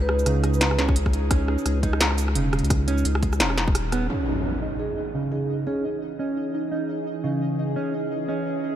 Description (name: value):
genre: half-time drum and bass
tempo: 172 BPM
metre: 4/4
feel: swing 58% on 16ths, half-time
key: C# minor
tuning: A4 = 441 Hz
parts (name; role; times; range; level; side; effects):
- vibraphone with soft mallets; melody; 0.0-0.8, 4.8-5.9 s; G#4 to B4; -32 LUFS; equal; dub echo
- saturated sub bass; bass; 0.0-4.1 s; D#1 to C#2; -24 LUFS; equal; none
- pulsing gated texture; texture; 0.0-8.8 s; D#4 to D#5; -32 LUFS; right 4 dB; chorus, built-in reverb
- industrial drum kit; drums; 0.1-4.0 s; hi-hat, rim click, shaker, snare drum; -26 LUFS; equal; low-pass filter on hats, studio reverb, low-pass filter on snare, low-pass filter on perc
- mellow electric guitar; arpeggios; 0.3-8.8 s; C#3 to D#4; -28 LUFS; right 2 dB; low-pass filter, dub echo
- electronic kick drum; drums; 0.9-3.7 s; none; -22 LUFS; equal; studio reverb
- bowed-like drone; sustained chords; 5.9-8.8 s; E3 to D#5; -30 LUFS; left 1 dB; built-in reverb, vintage 12-bit sampler grit, sidechain pumping
- impact; sound effects; 4.1-5.5 s; none; -30 LUFS; left 1 dB; none
room: light reverb, digital ambience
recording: dark, warm production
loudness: -21 LUFS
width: side -11 dB against mid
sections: 0.0-4.1 A section; 4.1-8.8 B section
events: drop 0.0-4.1; break 3.8-4.1; band accent 3.8; impact 4.1-5.5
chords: 0.0 C#madd9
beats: 0.26 0.61 0.96 | 1.31 1.66 2.00 2.35 | 2.70 3.05 3.40 3.75 | 4.10 4.45 4.80 5.14 | 5.49 5.84 6.19 6.54 | 6.89 7.24 7.59 7.94 | 8.29 8.63